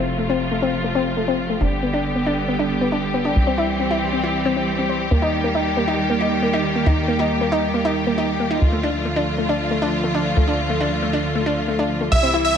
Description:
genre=trance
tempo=137 BPM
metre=4/4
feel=straight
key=unclear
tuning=A4 = 440 Hz
part: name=rich studio string section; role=sustained chords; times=0.0-12.6 s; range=C3 to G4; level=-21 LUFS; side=right 1 dB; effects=low-pass filter
part: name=tight sequencer bass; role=bass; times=0.0-12.6 s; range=F1 to Eb2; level=-26 LUFS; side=equal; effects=none
part: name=analog pluck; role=arpeggios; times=0.2-12.4 s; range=A3 to C5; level=-22 LUFS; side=left 2 dB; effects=chorus, digital delay
part: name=big supersaw lead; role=melody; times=12.1-12.6 s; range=E5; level=-17 LUFS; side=right 1 dB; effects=cassette tape
room=moderate scoring stage reverb, RT60 1.9 s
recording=none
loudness=-18 LUFS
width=side -8 dB against mid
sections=0.0-12.6 A section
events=filter sweep on synth pluck 0.0-12.6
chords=0.0 F; 1.6 G; 3.4 C; 5.1 Eb; 8.6 Dm

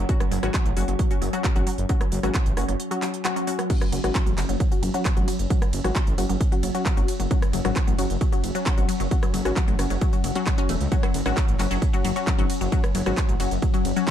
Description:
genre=driving peak-time techno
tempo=133 BPM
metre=4/4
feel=straight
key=unclear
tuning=A4 = 443 Hz
part: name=resonant blip pluck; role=riff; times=0.0-14.1 s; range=F#3 to C#4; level=-30 LUFS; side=left 1 dB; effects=phaser, tube saturation, sidechain pumping, digital delay
part: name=detuned saw bass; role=bass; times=0.0-13.9 s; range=E1 to C#2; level=-26 LUFS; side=equal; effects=sidechain pumping
part: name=metallic inharmonic drone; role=drone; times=0.0-14.1 s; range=F#3 to C#4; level=-32 LUFS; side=left 3 dB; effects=chorus, built-in reverb, sidechain pumping
part: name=filtered dub chord stab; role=stabs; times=0.1-14.1 s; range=F#3 to F#4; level=-30 LUFS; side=left 4 dB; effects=chorus, sidechain pumping, digital delay
part: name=electronic kick drum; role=drums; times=0.1-14.1 s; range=none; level=-23 LUFS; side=equal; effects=none
part: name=techno drum kit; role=drums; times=0.1-14.1 s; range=crash cymbal, handclaps, hi-hat, ride cymbal, rim click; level=-32 LUFS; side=right 1 dB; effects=none
room=little or no reverb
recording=dark, warm production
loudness=-21 LUFS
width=side -10 dB against mid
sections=0.0-14.1 A section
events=break 2.8-3.7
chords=0.0 F#5

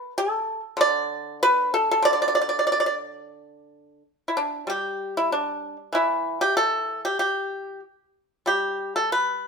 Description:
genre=chinese traditional, Chinese solo plucked strings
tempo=94 BPM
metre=2/4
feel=rubato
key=D zhi mode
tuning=A4 = 440 Hz
part: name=pipa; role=solo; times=0.0-9.5 s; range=D3 to D5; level=-21 LUFS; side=equal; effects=none
room=moderate studio reverb, RT60 0.9 s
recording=band playing live in one room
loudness=-21 LUFS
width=side -4 dB against mid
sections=0.0-3.4 A section; 3.4-9.5 B section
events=none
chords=none

